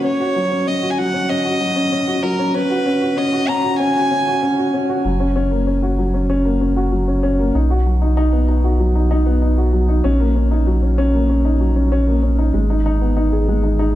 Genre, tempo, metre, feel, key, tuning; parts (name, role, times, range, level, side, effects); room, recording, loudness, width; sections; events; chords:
piano and strings electronica; 96 BPM; 4/4; straight; G# minor; A4 = 440 Hz
warm violin; melody; 0.0-4.7 s; A#4 to A#5; -21 LUFS; right 1 dB; ping-pong delay
dark upright piano; riff; 0.0-14.0 s; F#3 to G#4; -18 LUFS; left 1 dB; ping-pong delay
round analog bass; bass; 5.0-14.0 s; F#1 to B1; -17 LUFS; equal
moderate recital hall reverb, RT60 1.7 s, small room ambience; dark, warm production, lossy compression artefacts; -15 LUFS; side -14 dB against mid
0.0-5.0 A section; 5.0-14.0 B section
build-up 0.0-5.0; drop 5.0-14.0
0.0 D#m7; 2.5 G#m; 5.0 F#; 7.5 B; 10.0 D#m7/A#; 12.5 G#m